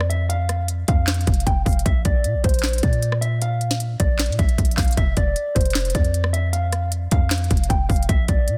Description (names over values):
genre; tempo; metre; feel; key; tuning
hip hop, trap; 154 BPM; 4/4; half-time; unclear; A4 = 440 Hz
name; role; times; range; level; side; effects
mellow electric guitar; melody; 0.0-8.6 s; C5 to G5; -30 LUFS; equal; low-pass filter, tape echo
warm 808-style bass; bass; 0.0-8.6 s; F1 to Bb2; -24 LUFS; equal; none
trap drum kit; drums; 0.0-8.6 s; handclaps, hi-hat, kick drum, rim click, snare drum; -22 LUFS; equal; soft clipping on snare
room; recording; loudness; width
digital ambience; dense, heavily limited modern master; -20 LUFS; mono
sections
0.0-8.6 A section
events
none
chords
0.0 F5; 1.9 Bb; 5.0 F5